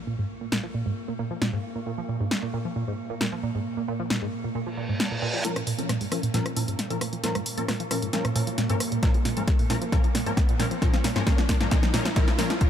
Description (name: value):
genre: driving peak-time techno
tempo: 134 BPM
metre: 4/4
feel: straight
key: Bb minor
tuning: A4 = 438 Hz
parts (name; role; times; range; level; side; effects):
- metallic inharmonic drone; drone; 0.0-12.7 s; Bb2 to Bb3; -35 LUFS; right 2 dB; chorus, built-in reverb, phaser, sidechain pumping
- impact, reverse cymbal, riser and sub drop; sound effects; 0.0-0.1, 4.7-12.7 s; none; -35 LUFS; right 1 dB; none
- tight sequenced synth; riff; 0.1-12.7 s; Ab2 to F3; -29 LUFS; right 2 dB; chorus, sidechain pumping, ping-pong delay
- punchy analog drum machine; drums; 0.5-12.7 s; hi-hat, rim click, snare drum; -29 LUFS; left 1 dB; overdrive, sidechain pumping on hats
- rave stab; stabs; 5.4-12.7 s; F3 to Bb4; -31 LUFS; left 3 dB; chorus, built-in reverb, sidechain pumping, digital delay
- electronic kick drum; drums; 9.0-12.7 s; none; -22 LUFS; equal; overdrive
room: light reverb, digital ambience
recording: none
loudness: -24 LUFS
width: side -9 dB against mid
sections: 0.0-5.4 A section; 5.4-12.6 B section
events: filter sweep on synth arpeggio sound 0.0-5.4, 5.4-12.6; reverse cymbal 4.7-5.4; build-up 5.4-12.6; drum fill 5.4-12.6; riser 5.4-12.6; filter sweep on synth stab 5.4-12.6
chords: 0.0 Bb5; 5.4 Bbm